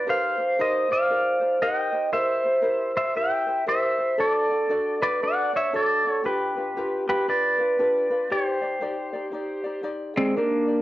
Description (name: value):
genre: Hawaiian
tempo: 116 BPM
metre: 4/4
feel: swing 61% on 8ths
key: unclear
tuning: A4 = 440 Hz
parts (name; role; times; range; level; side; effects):
- pedal steel guitar; melody; 0.0-10.8 s; Ab3 to G5; -24 LUFS; equal; cassette tape
- vibraphone with soft mallets; second line; 0.0-10.8 s; G4 to E5; -26 LUFS; right 2 dB; cassette tape
- ukulele; accompaniment; 0.0-10.8 s; D4 to D5; -30 LUFS; left 2 dB; cassette tape
room: wet spring reverb, RT60 1.1 s, small room ambience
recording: home recording on cassette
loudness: -22 LUFS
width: side -15 dB against mid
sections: 0.0-10.4 A section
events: none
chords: 0.1 Eb6; 2.1 C7; 4.2 D; 6.2 G7; 8.3 Cmadd9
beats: | 0.06 0.58 1.09 1.61 | 2.12 2.64 3.15 3.67 | 4.18 4.70 5.21 5.73 | 6.24 6.75 7.27 7.78 | 8.30 8.81 9.33 9.84 | 10.36